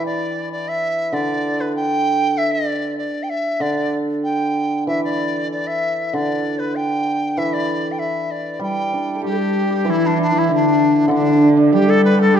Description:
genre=chinese traditional, Chinese chamber ensemble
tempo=97 BPM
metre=2/4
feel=rubato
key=unclear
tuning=A4 = 440 Hz
part: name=large dizi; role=melody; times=0.0-12.4 s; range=D4 to G5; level=-22 LUFS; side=equal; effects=none
part: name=hammered dulcimer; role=accompaniment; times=0.0-12.4 s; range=D3 to G4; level=-22 LUFS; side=right 1 dB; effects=none
part: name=breathy mellow low xiao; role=second line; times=9.2-12.4 s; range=D4 to A4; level=-19 LUFS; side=left 10 dB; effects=none
part: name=dark cello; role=second line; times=9.2-12.4 s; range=D3 to G3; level=-18 LUFS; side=right 4 dB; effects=none
part: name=hammered dulcimer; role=second line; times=9.2-12.4 s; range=D4 to B4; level=-19 LUFS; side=right 3 dB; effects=none
room=light reverb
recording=none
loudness=-16 LUFS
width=side -8 dB against mid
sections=0.0-9.9 A section; 9.9-12.4 B section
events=none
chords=none

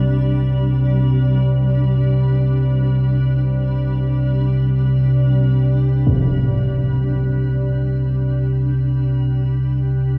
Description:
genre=dark ambient drone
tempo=free time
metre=none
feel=none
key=unclear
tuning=A4 = 437 Hz
part: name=granular cloud pad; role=sustained chords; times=0.0-10.2 s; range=G3 to D5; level=-29 LUFS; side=equal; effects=built-in reverb, shimmer reverb
part: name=deep rumbling drone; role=drone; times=0.0-10.2 s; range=C2 to C3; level=-18 LUFS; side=equal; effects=built-in reverb
part: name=impact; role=percussion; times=6.1-6.3 s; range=none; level=-25 LUFS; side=equal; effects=low-pass filter on sfx
room=wet cathedral reverb, RT60 5.4 s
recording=worn, warbling old tape, cassette tape, warbly pitch drift, small room ambience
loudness=-18 LUFS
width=mono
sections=0.0-10.2 A section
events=fade-out on ambient pad 0.0-10.2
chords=0.0 Csus2

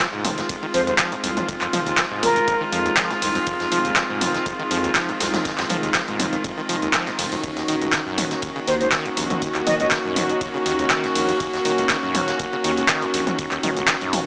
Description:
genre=acid house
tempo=121 BPM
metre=4/4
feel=swing 53% on 16ths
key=F phrygian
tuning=A4 = 440 Hz
part: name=warm studio string section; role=sustained chords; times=0.0-14.3 s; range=Eb3 to Gb4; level=-23 LUFS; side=equal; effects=vintage 12-bit sampler grit, sidechain pumping
part: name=acid bass, saw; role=riff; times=0.0-14.2 s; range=Db2 to F3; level=-28 LUFS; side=equal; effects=tube saturation, cassette tape, tape echo
part: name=electronic kick drum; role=drums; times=0.0-14.0 s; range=none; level=-37 LUFS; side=equal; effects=none
part: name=punchy analog drum machine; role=drums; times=0.0-14.2 s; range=handclaps, hi-hat, toms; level=-22 LUFS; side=equal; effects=none
part: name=vintage drum kit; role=drums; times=0.0-14.3 s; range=hi-hat, ride cymbal, snare drum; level=-32 LUFS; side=equal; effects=high-pass filter on cymbals, high-pass filter on hats, high-pass filter on snare, high-pass filter on room
part: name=saturated sub bass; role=bass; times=0.1-14.3 s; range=Eb1 to F2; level=-33 LUFS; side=equal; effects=tube saturation, sidechain pumping
part: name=jazz flute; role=melody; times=0.7-2.6, 8.7-9.9 s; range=Bb4 to Eb5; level=-23 LUFS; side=equal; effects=digital delay
room=moderate plate reverb, RT60 2.0 s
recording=small speaker sound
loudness=-19 LUFS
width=side -31 dB against mid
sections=0.0-14.3 A section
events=none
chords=0.0 Fm7; 7.4 Ebm7

